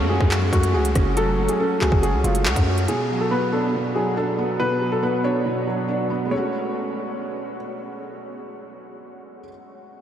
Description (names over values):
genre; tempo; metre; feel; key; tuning
hip hop, drill; 140 BPM; 4/4; half-time; F# minor; A4 = 440 Hz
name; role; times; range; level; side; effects
dark grand piano; melody; 0.0-7.6 s; E#4 to C#5; -26 LUFS; left 1 dB; analog delay
felt-muted upright piano; accompaniment; 0.0-10.0 s; B2 to F#4; -24 LUFS; right 2 dB; ensemble chorus
distorted 808-style bass; bass; 0.0-2.9 s; E#1 to F#2; -22 LUFS; equal; distortion
downlifter; sound effects; 0.0-2.9 s; none; -35 LUFS; right 1 dB; none
drill drum kit; drums; 0.2-3.0 s; handclaps, hi-hat, kick drum, rim click; -25 LUFS; equal; none
room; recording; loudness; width
wet huge ambient reverb, RT60 8.6 s; dreamy mix soaked in reverb; -19 LUFS; side -10 dB against mid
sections
0.0-6.3 A section; 6.3-9.7 B section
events
none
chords
0.0 F#madd9; 2.9 Bm; 6.3 F#madd9